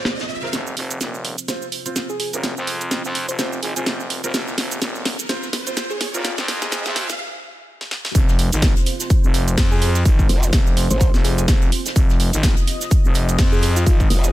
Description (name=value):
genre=bass house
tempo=126 BPM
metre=4/4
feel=swing 57% on 16ths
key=F minor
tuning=A4 = 441 Hz
part: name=dark analog pad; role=sustained chords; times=0.0-14.3 s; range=C4 to Eb5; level=-33 LUFS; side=right 3 dB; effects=chorus, sidechain pumping
part: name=clear baby grand piano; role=stabs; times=0.0-6.3 s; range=C4 to C5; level=-31 LUFS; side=right 2 dB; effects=sidechain pumping, low-pass filter, tape echo
part: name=riser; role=sound effects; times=0.0-7.2 s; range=none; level=-33 LUFS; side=right 1 dB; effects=none
part: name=house drum kit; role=drums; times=0.1-14.3 s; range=hi-hat, shaker, snare drum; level=-24 LUFS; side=right 1 dB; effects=low-pass filter on snare, low-pass filter on hats, low-pass filter on perc, low-pass filter on room
part: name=warm soul drum kit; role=drums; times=0.1-0.5, 8.2-14.2 s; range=hi-hat, shaker, snare drum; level=-32 LUFS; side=left 1 dB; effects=high-pass filter on hats, low-pass filter on hats, high-pass filter on snare, low-pass filter on snare, high-pass filter on perc, low-pass filter on perc, high-pass filter on room, low-pass filter on room
part: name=growling FM bass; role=bass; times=0.5-14.1 s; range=Eb1 to F2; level=-22 LUFS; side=equal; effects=overdrive, sidechain pumping, high-pass filter
part: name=soft struck synth lead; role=melody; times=2.1-14.3 s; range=F4 to C5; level=-30 LUFS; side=left 1 dB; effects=chorus, tape echo
part: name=electronic kick drum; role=drums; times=8.2-14.1 s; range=none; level=-16 LUFS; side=equal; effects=none
part: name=growl bass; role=bass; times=10.3-11.1, 14.1-14.3 s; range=F1 to Ab1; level=-18 LUFS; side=equal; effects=chorus, sidechain pumping
room=studio ambience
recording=high-pass filter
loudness=-17 LUFS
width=side -16 dB against mid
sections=0.5-8.2 A section; 8.2-14.3 B section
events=riser 0.0-0.5, 0.5-7.2; build-up 0.5-8.2; drum fill 0.5-7.2, 7.8-8.2; filter sweep on grand piano 0.5-8.2; filter sweep on analog synth pad 0.5-8.2; break 7.2-8.2; drop 8.2-14.3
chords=0.0 F5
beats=0.06 | 0.53 1.01 1.48 1.96 | 2.44 2.91 3.39 3.87 | 4.34 4.82 5.29 5.77 | 6.25 6.72 7.20 7.67 | 8.15 8.63 9.10 9.58 | 10.05 10.53 11.01 11.48 | 11.96 12.44 12.91 13.39 | 13.87